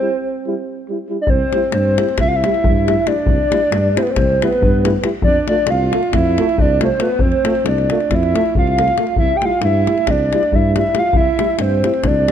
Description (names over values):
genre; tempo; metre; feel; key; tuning
balkan folk, Balkan brass band; 274 BPM (eighths); 9/8; straight; C major; A4 = 444 Hz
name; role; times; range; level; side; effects
warbly nostalgic lead; melody; 0.0-12.3 s; B4 to G5; -18 LUFS; left 1 dB; chorus
dark alto saxophone; second line; 0.0-12.3 s; B3 to G4; -22 LUFS; right 7 dB; none
mellow trombone; accompaniment; 0.0-12.3 s; G3 to A3; -26 LUFS; right 7 dB; none
warm euphonium; accompaniment; 0.0-11.9 s; E4 to F4; -27 LUFS; left 7 dB; none
mellow tuba; bass; 1.3-12.3 s; C2 to G2; -20 LUFS; equal; none
davul; percussion; 1.3-12.3 s; none; -20 LUFS; left 2 dB; none
room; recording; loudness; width
light reverb; close, detailed microphones; -13 LUFS; side -9 dB against mid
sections
0.0-1.3 A section; 1.3-12.3 A section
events
break 0.0-1.3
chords
0.0 C; 5.2 F; 9.2 C